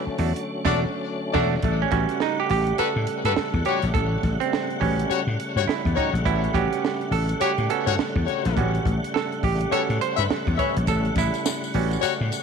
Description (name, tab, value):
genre	funk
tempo	104 BPM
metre	4/4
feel	swing 60% on 16ths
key	A mixolydian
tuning	A4 = 440 Hz
part	tonewheel organ	sustained chords	0.0-12.4 s	C#3 to F#5	-30 LUFS	left 2 dB	chorus vibrato, slow rotary speaker
part	bright clav	stabs	0.0-12.4 s	G3 to C#5	-26 LUFS	right 10 dB	none
part	vintage slap bass	bass	0.1-12.3 s	E1 to A2	-24 LUFS	left 2 dB	none
part	compact cocktail drum kit	drums	0.2-12.4 s	crash cymbal, hi-hat, kick drum, snare drum	-29 LUFS	right 3 dB	none
part	warm horn section	second line	0.7-12.1 s	G3 to E5	-28 LUFS	left 14 dB	tape echo
part	tambourine	percussion	10.9-12.4 s	none	-34 LUFS	left 15 dB	none
room	light reverb, small room ambience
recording	1960s-style stereo with parts hard left and right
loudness	-21 LUFS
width	side -6 dB against mid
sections	0.0-1.6 A section; 1.6-12.4 B section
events	band accent 0.5-1.6; clav solo 1.6-12.4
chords	0.0 E9sus4; 1.6 A13